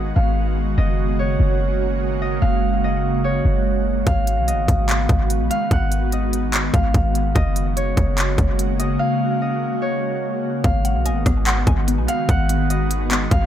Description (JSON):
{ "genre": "hip hop, atmospheric cloud-rap", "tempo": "146 BPM", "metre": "4/4", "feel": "half-time", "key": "G# dorian", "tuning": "A4 = 440 Hz", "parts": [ { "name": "concert harp", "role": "melody", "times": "0.0-13.5 s", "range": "C#5 to F#5", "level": "-25 LUFS", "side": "equal", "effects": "low-pass filter, analog delay" }, { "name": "ethereal airy pad", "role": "sustained chords", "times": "0.0-13.5 s", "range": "C#3 to F#4", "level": "-23 LUFS", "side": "right 1 dB", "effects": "ensemble chorus, built-in reverb, sidechain pumping" }, { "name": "clean 808-style bass", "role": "bass", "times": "0.0-13.5 s", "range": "F#1 to B1", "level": "-20 LUFS", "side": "equal", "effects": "none" }, { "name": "trap drum kit", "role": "drums", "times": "4.1-13.4 s", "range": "handclaps, hi-hat, kick drum, rim click", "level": "-21 LUFS", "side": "equal", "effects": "none" }, { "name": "mallet-like synth pluck", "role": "arpeggios", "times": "10.6-13.5 s", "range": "B3 to G#5", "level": "-29 LUFS", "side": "left 2 dB", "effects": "chorus, phaser, low-pass filter, analog delay" } ], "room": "light reverb, digital ambience", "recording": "echo-heavy mix", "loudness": "-17 LUFS", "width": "side -10 dB against mid", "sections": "0.0-10.6 A section; 10.6-13.5 B section", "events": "break 9.0-10.6", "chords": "0.0 G#m7; 0.8 F#add9; 4.1 G#m7; 7.4 F#add9; 10.6 G#m7", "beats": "0.37 | 0.78 1.19 1.60 2.01 | 2.42 2.83 3.25 3.66 | 4.07 4.48 4.89 5.30 | 5.71 6.12 6.53 6.95 | 7.36 7.77 8.18 8.59 | 9.00 9.41 9.82 10.23 | 10.64 11.05 11.46 11.88 | 12.29 12.70 13.11" }